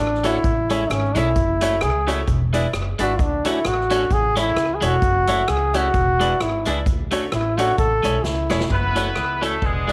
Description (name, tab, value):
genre	ska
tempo	131 BPM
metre	4/4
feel	swing 57% on 8ths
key	F# minor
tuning	A4 = 440 Hz
part	clear trombone	melody	0.0-8.7 s	C#4 to A4	-23 LUFS	equal	none
part	upright bass	bass	0.0-9.9 s	E1 to D2	-27 LUFS	equal	none
part	electric guitar at the edge of break-up	accompaniment	0.2-9.9 s	G#3 to F#4	-30 LUFS	equal	phaser
part	clear upright piano	stabs	0.2-9.9 s	D4 to D5	-30 LUFS	equal	none
part	swinging big-band drum kit	drums	0.2-9.9 s	hi-hat, kick drum, rim click, snare drum	-28 LUFS	equal	slapback echo
part	cabasa	percussion	0.2-8.6 s	none	-46 LUFS	equal	none
part	clear horn section	melody	8.7-9.9 s	G#3 to B4	-25 LUFS	equal	none
room	wet spring reverb, RT60 1.1 s, small room ambience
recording	none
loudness	-20 LUFS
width	mono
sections	0.0-8.7 A section; 8.7-9.9 B section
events	trombone solo 0.0-8.7; drum fill 8.2-8.7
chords	0.4 Amaj7; 1.4 F#m7; 2.3 E7; 3.2 Dmaj7; 4.1 Amaj7; 5.0 F#m7; 5.9 E7; 6.9 Dmaj7; 7.8 Amaj7; 8.7 F#m7